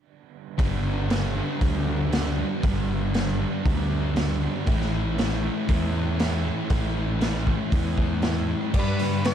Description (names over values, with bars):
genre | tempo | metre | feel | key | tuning
rock, shoegaze and dream pop | 118 BPM | 4/4 | straight | unclear | A4 = 440 Hz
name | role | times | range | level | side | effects
crunchy overdriven guitar | riff | 0.6-9.3 s | G2 to G4 | -30 LUFS | right 10 dB | reverse reverb
thick fuzz guitar | riff | 0.6-9.3 s | G2 to A3 | -30 LUFS | left 10 dB | distortion, lush chorus
fuzz fingered electric bass | bass | 0.6-9.3 s | G1 to G2 | -27 LUFS | equal | overdrive
raw garage drum kit | drums | 0.6-9.3 s | crash cymbal, hi-hat, kick drum, snare drum | -26 LUFS | equal | none
string machine, cellos | sustained chords | 8.7-9.3 s | G4 to D6 | -34 LUFS | equal | ensemble chorus
picked twelve-string acoustic guitar | arpeggios | 8.7-9.3 s | B4 to D5 | -33 LUFS | right 2 dB | lush chorus
octave-fuzz lead guitar | melody | 8.8-9.3 s | B4 to D5 | -32 LUFS | left 3 dB | distortion
room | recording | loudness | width
light reverb, studio ambience | dark, warm production | -22 LUFS | side -9 dB against mid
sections
0.6-8.7 A section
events
none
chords
0.6 G; 4.7 A; 8.7 G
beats
| 0.59 1.10 1.62 2.13 | 2.64 3.15 3.66 4.17 | 4.67 5.18 5.69 6.20 | 6.71 7.21 7.72 8.23 | 8.74 9.24